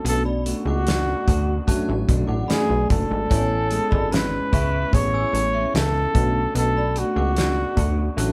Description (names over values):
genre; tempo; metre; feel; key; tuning
indie pop, bedroom pop; 74 BPM; 4/4; straight; B dorian; A4 = 441 Hz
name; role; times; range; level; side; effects
breathy trumpet; melody; 0.0-8.3 s; F#4 to C#5; -27 LUFS; equal; none
electric guitar through a small old amp; accompaniment; 0.0-8.3 s; B2 to F#4; -34 LUFS; equal; vibrato effect
tine electric piano; accompaniment; 0.0-8.3 s; A3 to G#5; -32 LUFS; equal; none
plucky analog bass; bass; 0.0-8.3 s; F#1 to D2; -26 LUFS; equal; none
loose indie drum kit; drums; 0.1-8.3 s; hi-hat, kick drum, snare drum; -26 LUFS; equal; none
synth chime; second line; 0.3-8.3 s; C#5 to F#6; -36 LUFS; equal; ensemble chorus
room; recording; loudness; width
moderate small room reverb, RT60 0.6 s; band playing live in one room; -21 LUFS; mono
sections
0.0-8.3 A section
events
none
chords
0.0 Bm7; 3.3 Amaj7; 6.1 Bm7